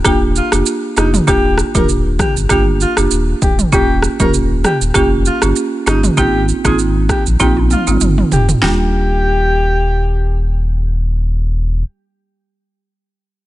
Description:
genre	afrobeats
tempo	98 BPM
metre	4/4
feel	swing 55% on 16ths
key	Eb major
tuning	A4 = 443 Hz
part	marimba with medium mallets	accompaniment	0.0-12.5 s	G3 to G4	-17 LUFS	right 3 dB	none
part	deep house drum kit	drums	0.0-8.8 s	kick drum, rim click, shaker, snare drum, toms	-16 LUFS	equal	overdrive
part	breathy alto saxophone	melody	0.1-10.4 s	Eb4 to Bb4	-19 LUFS	left 2 dB	ping-pong delay
part	sub bass with octave	bass	0.1-11.8 s	D1 to Bb1	-16 LUFS	equal	none
room	digital ambience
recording	nothing above 11.0 kHz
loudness	-12 LUFS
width	side -15 dB against mid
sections	0.0-8.6 A section; 8.6-11.1 B section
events	drum fill 7.4-8.6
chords	0.0 Ebmaj7; 3.7 Eb7; 6.2 Ab69; 8.6 Ebmaj7

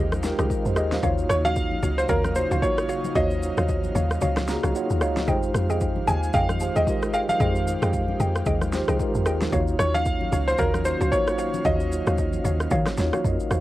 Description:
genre	amapiano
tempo	113 BPM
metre	4/4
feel	swing 58% on 16ths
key	unclear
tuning	A4 = 442 Hz
part	mellow tine electric piano	accompaniment	0.0-13.6 s	G3 to Bb5	-28 LUFS	equal	medium stereo tremolo
part	airy breathy pad	sustained chords	0.0-13.6 s	Db3 to F5	-35 LUFS	right 1 dB	chorus, sidechain pumping
part	mallet-like synth pluck	stabs	0.0-13.6 s	Gb4 to G5	-30 LUFS	equal	chorus, phaser, tape echo
part	deep log drum bass	bass	0.0-13.6 s	C2 to Eb3	-26 LUFS	equal	none
part	deep house drum kit	drums	0.1-13.6 s	kick drum, rim click, shaker, snare drum	-28 LUFS	equal	cassette tape
part	congas	percussion	0.1-13.2 s	none	-34 LUFS	left 5 dB	none
part	felt-muted upright piano	melody	1.3-12.7 s	Bb4 to Ab5	-26 LUFS	right 1 dB	tape echo
room	light reverb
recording	home recording on cassette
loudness	-21 LUFS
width	side -16 dB against mid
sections	0.0-13.6 A section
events	tine electric piano fill 0.0-1.0, 4.2-5.3; kick muted 4.2-5.3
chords	0.0 Fm9; 1.0 Ebm9; 5.3 Fm9; 9.5 Ebm9

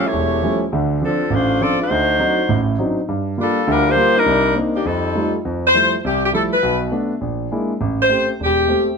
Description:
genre	jazz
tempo	203 BPM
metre	4/4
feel	swing 63% on 8ths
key	F major from 5.4 s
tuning	A4 = 441 Hz
part	mellow saxophone section	melody	0.0-8.9 s	Eb3 to D5	-16 LUFS	left 1 dB	none
part	warm grand piano	accompaniment	0.0-8.9 s	E1 to G4	-19 LUFS	right 1 dB	none
room	moderate large studio reverb, RT60 1.1 s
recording	close, detailed microphones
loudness	-15 LUFS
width	side -5 dB against mid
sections	0.0-5.4 A section; 5.4-9.0 B section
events	none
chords	0.0 A7b13; 0.7 Dm7; 1.9 D7b9; 3.1 Gm7; 4.3 Cm9; 4.9 F9; 5.4 Fmaj9; 6.6 Bm7; 7.2 Bb7#11; 7.8 Am7

